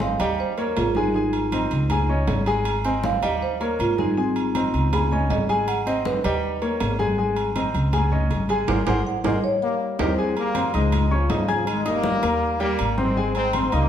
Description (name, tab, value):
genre	latin, salsa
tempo	160 BPM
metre	4/4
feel	straight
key	Ab major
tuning	A4 = 440 Hz
part	marimba with soft mallets	melody	0.0-10.2 s	C4 to Cb6	-26 LUFS	right 3 dB	none
part	warm concert grand piano	accompaniment	0.0-13.9 s	G3 to Ab6	-26 LUFS	left 2 dB	none
part	upright bass	bass	0.0-13.9 s	Ab1 to Eb2	-26 LUFS	equal	none
part	congas	percussion	0.0-13.7 s	none	-30 LUFS	left 2 dB	none
part	agogo bells and timbales	percussion	0.2-13.9 s	none	-29 LUFS	right 4 dB	none
part	bright trombone section	melody	9.6-13.9 s	Db3 to C4	-24 LUFS	left 2 dB	none
room	wet large studio reverb, RT60 1.1 s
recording	heard from further back in the room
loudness	-20 LUFS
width	side -9 dB against mid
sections	0.0-10.2 A section; 10.2-13.9 B section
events	marimba solo 0.0-10.2; band accent 8.7-10.2; drum fill 9.6-10.2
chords	0.4 Eb7; 1.1 Ab; 1.9 Dbsus2; 2.7 Ab; 3.4 Eb7; 4.2 Ab; 4.9 Dbsus2; 5.7 Ab; 6.4 Eb7; 7.2 Ab; 7.9 Dbsus2; 8.7 Abadd9; 9.4 Eb7; 10.2 Abadd9; 10.9 Dbadd9; 11.7 Absus2; 12.4 Eb; 13.2 Ab